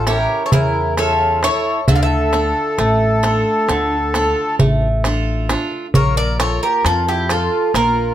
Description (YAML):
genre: greek folk, Greek bouzouki band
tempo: 133 BPM (eighths)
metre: 9/8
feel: straight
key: unclear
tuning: A4 = 440 Hz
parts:
  - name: Greek bouzouki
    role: melody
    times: 0.0-8.1 s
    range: G4 to F5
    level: -18 LUFS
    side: equal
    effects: none
  - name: accordion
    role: second line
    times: 0.0-8.1 s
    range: E4 to D5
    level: -21 LUFS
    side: left 1 dB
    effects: light tremolo tuning
  - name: picked swing-style acoustic guitar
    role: accompaniment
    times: 0.0-8.1 s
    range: C#3 to E5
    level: -21 LUFS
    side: right 3 dB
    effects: none
  - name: upright bass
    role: bass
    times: 0.0-8.1 s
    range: A1 to F2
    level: -20 LUFS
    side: left 1 dB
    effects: none
  - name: darbuka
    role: percussion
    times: 0.1-7.9 s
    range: none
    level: -18 LUFS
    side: right 1 dB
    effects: none
room: moderate small room reverb, RT60 0.5 s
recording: none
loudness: -14 LUFS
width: side -11 dB against mid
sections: 0.0-8.1 A section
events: none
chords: 0.0 A; 1.9 Dm; 5.9 Bb